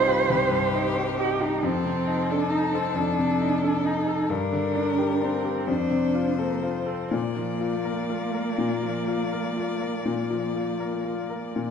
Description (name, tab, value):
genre	classical, slow romantic movement for piano trio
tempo	40-46 BPM (dotted quarters)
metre	12/8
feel	rubato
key	Bb major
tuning	A4 = 440 Hz
part	warm violin	melody	0.0-11.7 s	F4 to D5	-32 LUFS	left 7 dB	none
part	warm cello	second line	0.0-11.6 s	Bb3 to C5	-27 LUFS	right 4 dB	none
part	bright grand piano	accompaniment	0.0-11.7 s	C2 to Bb4	-26 LUFS	left 3 dB	none
room	wet recital hall reverb, RT60 1.6 s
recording	dark, warm production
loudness	-23 LUFS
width	side -7 dB against mid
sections	0.0-11.7 A section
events	none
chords	0.0 Cm; 1.6 F7; 4.3 Gm; 5.7 F; 7.1 Bb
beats	0.31 | 1.64 2.96 4.30 5.69 | 7.14 8.60 10.07 11.55